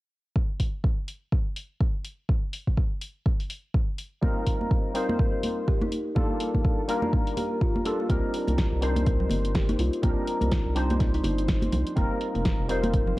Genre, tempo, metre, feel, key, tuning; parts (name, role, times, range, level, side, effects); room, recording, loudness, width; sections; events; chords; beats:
deep house; 124 BPM; 4/4; swing 58% on 16ths; C dorian; A4 = 440 Hz
electronic kick drum; drums; 0.4-13.0 s; -25 LUFS; equal
deep house drum kit; drums; 0.6-13.0 s; hi-hat, snare drum; -34 LUFS; equal
percussive organ stab; stabs; 4.2-13.2 s; G3 to C5; -30 LUFS; equal; ensemble chorus, sidechain pumping
congas; percussion; 4.2-13.2 s; -32 LUFS; equal
kalimba; melody; 5.0-12.9 s; D4 to Bb4; -32 LUFS; left 2 dB; analog delay
rubbery square bass; bass; 8.1-13.1 s; F1 to C2; -28 LUFS; equal; sidechain pumping
little or no reverb; cassette tape; -24 LUFS; side -18 dB against mid
0.4-8.1 A section; 8.1-13.2 B section
0.4 N.C.; 4.2 F7sus4; 5.9 Gm9; 8.1 Cm9; 12.0 F7sus4
| 0.35 0.84 1.32 1.81 | 2.29 2.77 3.26 3.74 | 4.23 4.71 5.19 5.68 | 6.16 6.64 7.13 7.61 | 8.10 8.58 9.06 9.55 | 10.03 10.52 11.00 11.48 | 11.97 12.45 12.94